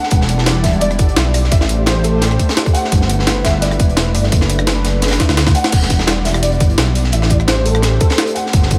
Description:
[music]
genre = liquid drum and bass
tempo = 171 BPM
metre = 4/4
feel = straight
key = E minor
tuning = A4 = 441 Hz
[part]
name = dark concert grand piano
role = melody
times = 0.0-8.8 s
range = A4 to F#5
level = -25 LUFS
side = equal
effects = ensemble chorus, delay
[part]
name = warm analog pad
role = sustained chords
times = 0.0-8.8 s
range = G3 to D5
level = -25 LUFS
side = equal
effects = chorus
[part]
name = crunchy breakbeat drum kit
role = drums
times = 0.0-8.8 s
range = hi-hat, snare drum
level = -25 LUFS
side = equal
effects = high-pass filter on hats, high-pass filter on snare, high-pass filter on room
[part]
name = dark detuned saw bass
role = bass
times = 0.1-8.8 s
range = E1 to D2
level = -18 LUFS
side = equal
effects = none
[part]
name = electronic kick drum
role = drums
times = 0.1-8.8 s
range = none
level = -16 LUFS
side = equal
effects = none
[part]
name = jungle sampler-style drum kit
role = drums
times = 0.1-8.8 s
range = crash cymbal, hi-hat, rim click, snare drum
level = -22 LUFS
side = equal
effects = overdrive
[sound]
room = light reverb, small room ambience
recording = none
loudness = -14 LUFS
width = mono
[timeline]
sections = 0.0-5.7 A section; 5.7-8.8 A section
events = drop 0.0-5.7, 5.7-8.8; drum fill 5.2-5.7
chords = 0.1 Em7; 1.5 Am7; 2.9 G69; 4.3 Bm7/F#; 5.7 Em7; 7.1 Am7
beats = | 0.11 0.46 0.81 1.17 | 1.52 1.87 2.22 2.57 | 2.92 3.27 3.62 3.97 | 4.32 4.67 5.03 5.38 | 5.73 6.08 6.43 6.78 | 7.13 7.48 7.83 8.18 | 8.53

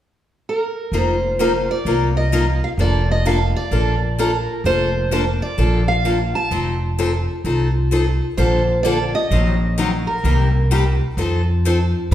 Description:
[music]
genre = acoustic string swing (jazz manouche)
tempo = 129 BPM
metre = 4/4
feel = swing 64% on 8ths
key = Bb major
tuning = A4 = 437 Hz
[part]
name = picked steel-string acoustic guitar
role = melody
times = 0.5-12.1 s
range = Bb4 to A5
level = -22 LUFS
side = right 2 dB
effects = none
[part]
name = picked steel-string acoustic guitar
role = accompaniment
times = 0.9-12.1 s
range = C3 to Bb4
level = -21 LUFS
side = left 2 dB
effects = none
[part]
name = upright bass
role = bass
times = 0.9-12.1 s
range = F1 to F2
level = -19 LUFS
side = equal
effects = none
[sound]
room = wet large studio reverb, RT60 1.3 s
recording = band playing live in one room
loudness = -16 LUFS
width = side -12 dB against mid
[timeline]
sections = 0.9-8.4 A section; 8.4-12.1 B section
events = none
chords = 0.0 N.C.; 0.9 F7sus4; 2.8 Bbmaj7/F; 6.5 F7; 8.4 Bbmaj9; 9.3 Ebm6/Bb; 10.2 Cm7; 11.2 F7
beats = 0.45 | 0.92 1.39 1.85 2.32 | 2.79 3.25 3.72 4.18 | 4.65 5.12 5.58 6.05 | 6.52 6.98 7.45 7.92 | 8.38 8.85 9.31 9.78 | 10.25 10.71 11.18 11.65 | 12.11

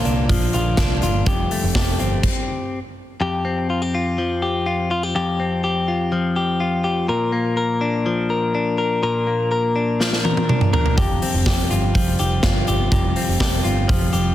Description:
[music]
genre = jangly indie pop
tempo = 124 BPM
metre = 4/4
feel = straight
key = unclear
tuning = A4 = 440 Hz
[part]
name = string machine, violas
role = sustained chords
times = 0.0-2.2, 11.0-14.3 s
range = C3 to F4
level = -30 LUFS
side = right 3 dB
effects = none
[part]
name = direct-recorded clean electric guitar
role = arpeggios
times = 0.0-14.3 s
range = F2 to Bb4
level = -20 LUFS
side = left 2 dB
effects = analog delay
[part]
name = deep dub picked electric bass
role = bass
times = 0.1-2.2, 11.0-14.3 s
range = F1 to C2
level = -22 LUFS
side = right 1 dB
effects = none
[part]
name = big rock drum kit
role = drums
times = 0.1-2.3, 10.0-14.2 s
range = crash cymbal, hi-hat, kick drum, snare drum, toms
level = -20 LUFS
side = right 1 dB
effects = none
[sound]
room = small room reverb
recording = dense, heavily limited modern master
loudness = -17 LUFS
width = side -13 dB against mid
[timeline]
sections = 0.0-3.2 A section; 3.2-14.3 A section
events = stop 2.2-3.2; drum fill 10.0-11.0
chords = 0.0 Bb; 1.3 Fadd9; 3.2 Fsus2; 7.1 Bb; 11.0 Fsus2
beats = 0.29 0.78 | 1.26 1.75 2.24 2.72 | 3.21 3.69 4.18 4.66 | 5.15 5.63 6.12 6.60 | 7.09 7.58 8.06 8.55 | 9.03 9.52 10.00 10.49 | 10.97 11.46 11.95 12.43 | 12.92 13.40 13.89

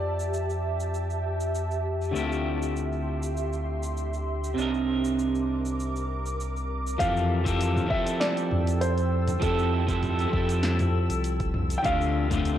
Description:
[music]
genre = sunset chillout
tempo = 99 BPM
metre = 4/4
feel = straight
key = F major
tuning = A4 = 440 Hz
[part]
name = dark grand piano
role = melody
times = 0.0-1.8, 7.0-12.6 s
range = A4 to G5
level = -30 LUFS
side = equal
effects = tape echo
[part]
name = electric guitar at the edge of break-up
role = accompaniment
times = 0.0-12.6 s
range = C3 to Bb4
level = -28 LUFS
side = moving between left 6 dB and right 6 dB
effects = auto-pan, tape echo
[part]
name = ethereal airy pad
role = sustained chords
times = 0.0-12.6 s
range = G4 to E6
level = -34 LUFS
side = equal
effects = ensemble chorus, built-in reverb
[part]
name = warm sub bass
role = bass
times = 0.0-12.6 s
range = C2 to F2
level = -29 LUFS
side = equal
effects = none
[part]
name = deep house drum kit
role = drums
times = 0.2-12.6 s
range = cabasa, hi-hat, snare drum, toms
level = -34 LUFS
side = equal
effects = overdrive
[part]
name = electronic kick drum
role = drums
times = 7.0-12.4 s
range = none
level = -31 LUFS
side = equal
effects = overdrive
[sound]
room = wet digital room reverb, RT60 1.1 s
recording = worn, warbling old tape, cassette tape, warbly pitch drift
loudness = -24 LUFS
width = side -11 dB against mid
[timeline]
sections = 0.0-7.0 A section; 7.0-12.6 B section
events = none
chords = 0.0 Fmaj9; 2.2 Dm11; 4.6 Cm9; 7.0 Fmaj9; 11.8 Dm11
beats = 0.33 0.94 1.54 | 2.15 2.76 3.36 3.97 | 4.58 5.18 5.79 6.39 | 7.00 7.61 8.21 8.82 | 9.42 10.03 10.64 11.24 | 11.85 12.45

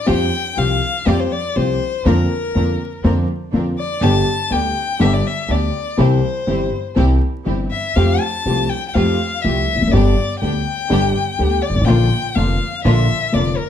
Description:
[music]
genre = tango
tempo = 122 BPM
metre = 4/4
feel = rubato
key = F major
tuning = A4 = 440 Hz
[part]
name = warm violin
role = second line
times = 0.0-13.7 s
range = Bb4 to A5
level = -22 LUFS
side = left 5 dB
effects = none
[part]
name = dark baby grand piano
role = accompaniment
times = 0.1-13.5 s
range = F1 to G4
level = -19 LUFS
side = left 2 dB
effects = none
[part]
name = rich symphonic string section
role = stabs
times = 0.1-13.5 s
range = A3 to Bb4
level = -26 LUFS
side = right 1 dB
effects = none
[part]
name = upright bass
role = bass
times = 0.1-13.5 s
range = E1 to F2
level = -19 LUFS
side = equal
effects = none
[sound]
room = moderate large studio reverb, RT60 0.9 s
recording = dark, warm production, vinyl crackle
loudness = -15 LUFS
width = side -9 dB against mid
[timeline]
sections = 0.1-13.7 A section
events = violin solo 0.1-13.7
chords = 0.1 Fsus2; 2.1 Bbadd9/F; 4.0 G; 6.0 C; 8.0 Fadd9; 9.9 G; 11.9 Bb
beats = | 0.07 0.57 1.07 1.56 | 2.05 2.55 3.04 3.53 | 4.02 4.51 5.00 5.49 | 5.98 6.47 6.96 7.46 | 7.95 8.45 8.95 9.44 | 9.93 10.41 10.90 11.39 | 11.88 12.36 12.85 13.34

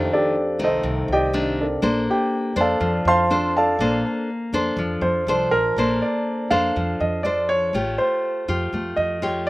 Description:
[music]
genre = bossa nova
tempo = 122 BPM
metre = 4/4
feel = straight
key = Bb major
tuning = A4 = 439 Hz
[part]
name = warm concert grand piano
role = melody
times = 0.0-9.5 s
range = D4 to C6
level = -21 LUFS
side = equal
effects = none
[part]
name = nylon-string guitar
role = accompaniment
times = 0.0-9.5 s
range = F2 to C#5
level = -24 LUFS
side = left 1 dB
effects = none
[part]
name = vibraphone with medium mallets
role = accompaniment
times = 0.0-1.8, 5.3-7.8 s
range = C5 to A5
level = -30 LUFS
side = right 2 dB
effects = none
[part]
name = upright bass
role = bass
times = 0.0-9.5 s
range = A1 to F2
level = -28 LUFS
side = equal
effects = none
[sound]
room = light reverb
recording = recorded outdoors, with no room sound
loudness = -19 LUFS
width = side -19 dB against mid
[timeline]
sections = 0.0-5.8 A section; 5.8-9.5 B section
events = grand piano solo 0.0-5.8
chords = 0.0 F13; 1.8 Bbmaj9; 7.7 A7alt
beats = 0.35 0.84 1.33 | 1.82 2.32 2.81 3.30 | 3.79 4.29 4.78 5.27 | 5.76 6.26 6.75 7.24 | 7.74 8.23 8.72 9.22

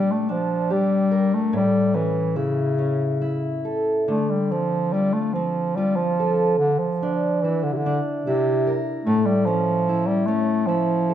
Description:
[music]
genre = celtic folk, Celtic slow air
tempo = 72 BPM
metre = 3/4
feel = rubato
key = unclear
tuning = A4 = 437 Hz
[part]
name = warm bass clarinet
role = melody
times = 0.0-11.1 s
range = C3 to A3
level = -20 LUFS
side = equal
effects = none
[part]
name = fingerpicked steel-string acoustic guitar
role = accompaniment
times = 0.0-11.1 s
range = A2 to Bb4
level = -25 LUFS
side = right 1 dB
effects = none
[sound]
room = moderate recital hall reverb, RT60 1.5 s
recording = minimal, uncompressed stereo recording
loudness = -19 LUFS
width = side -10 dB against mid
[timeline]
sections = 0.0-11.1 A section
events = none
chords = 0.0 Gm/Bb; 1.5 A; 4.1 Dm7; 6.6 C9; 9.1 A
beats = 0.71 | 1.53 2.36 3.22 | 4.08 4.93 5.78 | 6.62 7.45 8.27 | 9.07 9.89 10.69

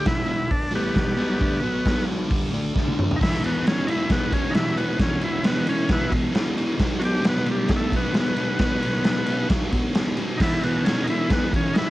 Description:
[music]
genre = garage rock duo or trio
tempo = 134 BPM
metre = 4/4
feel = straight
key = unclear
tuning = A4 = 439 Hz
[part]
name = overdriven combo organ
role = melody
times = 0.0-11.9 s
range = G3 to G4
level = -26 LUFS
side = equal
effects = cassette tape
[part]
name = thick fuzz guitar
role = riff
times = 0.0-11.9 s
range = E2 to D4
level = -26 LUFS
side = equal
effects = distortion, cassette tape
[part]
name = raw garage drum kit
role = drums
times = 0.1-11.9 s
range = crash cymbal, hi-hat, kick drum, ride cymbal, snare drum, toms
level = -23 LUFS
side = equal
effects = cassette tape
[sound]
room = small room ambience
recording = home recording on cassette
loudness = -20 LUFS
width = side -16 dB against mid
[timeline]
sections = 0.0-3.2 A section; 3.2-11.9 B section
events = drum fill 2.8-3.2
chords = 0.0 E5; 1.6 B5; 2.3 Gsus2; 2.8 D5; 3.2 E5; 6.8 B5; 10.4 E5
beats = 0.07 0.52 0.96 | 1.41 1.86 2.31 2.76 | 3.21 3.65 4.10 4.55 | 5.00 5.45 5.90 6.35 | 6.80 7.25 7.70 8.15 | 8.60 9.05 9.50 9.95 | 10.40 10.85 11.30 11.75

